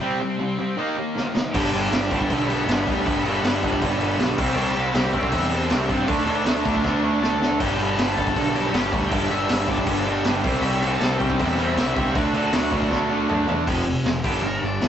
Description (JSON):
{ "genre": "punk rock", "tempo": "158 BPM", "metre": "4/4", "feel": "straight", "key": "G major", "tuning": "A4 = 438 Hz", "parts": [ { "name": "cranked stack guitar", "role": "melody", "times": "0.0-14.9 s", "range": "G3 to B5", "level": "-30 LUFS", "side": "left 2 dB", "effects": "overdrive, tape echo" }, { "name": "distorted electric guitar", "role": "riff", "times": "0.0-14.9 s", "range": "F2 to Eb4", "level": "-28 LUFS", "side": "left 6 dB", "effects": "overdrive" }, { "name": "distorted electric guitar", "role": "riff", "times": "0.0-14.9 s", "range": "F2 to Eb4", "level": "-25 LUFS", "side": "right 5 dB", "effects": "distortion" }, { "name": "thick fuzz guitar", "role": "riff", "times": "0.0-14.9 s", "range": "F2 to Eb4", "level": "-30 LUFS", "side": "equal", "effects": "none" }, { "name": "raw garage drum kit", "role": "drums", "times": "1.2-14.9 s", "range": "crash cymbal, hi-hat, kick drum, snare drum, toms", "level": "-24 LUFS", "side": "equal", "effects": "none" }, { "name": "growling picked electric bass", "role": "bass", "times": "1.5-14.9 s", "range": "F1 to G2", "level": "-28 LUFS", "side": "equal", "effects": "overdrive" } ], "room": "light reverb", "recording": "rough rehearsal-room recording, nothing above 7.9 kHz", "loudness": "-19 LUFS", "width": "side -9 dB against mid", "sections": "0.0-1.5 A section; 1.5-13.7 B section; 13.7-14.9 C section", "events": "break 0.0-1.5; drum fill 1.2-1.5, 6.8-7.6, 12.9-13.7; overdriven electric guitar solo 13.7-14.9", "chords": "0.0 C5; 0.8 Eb5; 1.5 G; 4.4 C; 6.1 D5; 7.6 G; 10.4 C; 12.1 D; 13.7 F5; 14.2 G5", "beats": "| 0.01 0.39 0.78 1.16 | 1.54 1.92 2.30 2.67 | 3.06 3.43 3.81 4.19 | 4.57 4.95 5.33 5.71 | 6.09 6.46 6.84 7.22 | 7.60 7.98 8.36 8.74 | 9.12 9.50 9.88 10.25 | 10.63 11.01 11.39 11.77 | 12.15 12.53 12.91 13.29 | 13.67 14.05 14.43 14.81" }